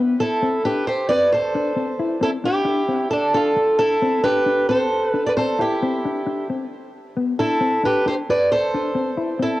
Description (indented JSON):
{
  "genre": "highlife",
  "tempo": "133 BPM",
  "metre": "4/4",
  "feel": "swing 54% on 16ths",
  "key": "C major",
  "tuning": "A4 = 440 Hz",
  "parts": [
    { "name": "mellow electric guitar", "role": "accompaniment", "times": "0.0-9.6 s", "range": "B3 to E4", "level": "-24 LUFS", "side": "left 3 dB", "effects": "cassette tape" },
    { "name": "picked swing-style acoustic guitar", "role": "melody", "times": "0.2-9.6 s", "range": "D4 to D5", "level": "-19 LUFS", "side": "right 1 dB", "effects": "cassette tape, tape echo" }
  ],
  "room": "moderate spring reverb, RT60 1.6 s, small room ambience",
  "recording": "home recording on cassette",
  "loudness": "-18 LUFS",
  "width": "side -16 dB against mid",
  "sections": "0.4-9.6 A section",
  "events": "none",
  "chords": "0.4 C; 1.3 C69; 2.2 C; 3.1 Bm7b5 (rootless); 4.0 C; 4.9 C69; 5.8 C; 6.7 Bmadd11; 7.6 C; 8.5 C69",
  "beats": "| 0.43 0.88 1.32 1.77 | 2.22 2.67 3.12 3.57 | 4.02 4.47 4.92 5.37 | 5.82 6.27 6.72 7.17 | 7.62 8.07 8.52 8.97 | 9.42"
}